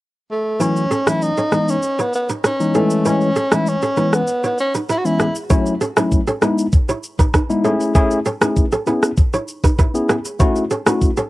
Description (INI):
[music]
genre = afrobeats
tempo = 98 BPM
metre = 4/4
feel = straight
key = F# dorian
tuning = A4 = 436 Hz
[part]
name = breathy tenor saxophone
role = melody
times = 0.3-5.4 s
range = A3 to F#4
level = -20 LUFS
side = equal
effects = none
[part]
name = tine electric piano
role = accompaniment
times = 0.6-11.1 s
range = E3 to G#4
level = -18 LUFS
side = left 2 dB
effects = overdrive, cassette tape
[part]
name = kora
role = riff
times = 0.6-11.3 s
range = B3 to C#5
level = -23 LUFS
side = right 2 dB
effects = cassette tape, tape echo
[part]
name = afro-pop drum kit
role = drums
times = 0.6-11.3 s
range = kick drum, rim click, shaker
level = -16 LUFS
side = equal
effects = cassette tape
[sound]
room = little or no reverb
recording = home recording on cassette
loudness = -15 LUFS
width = side -18 dB against mid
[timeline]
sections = 0.6-5.5 A section; 5.5-11.3 B section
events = none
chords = 0.0 N.C.; 0.6 F#m7; 1.5 Emaj7; 2.7 Amaj7; 4.0 C#m7; 5.5 F#m7; 6.4 Emaj7; 7.6 Amaj7; 8.9 C#m7; 10.4 F#m7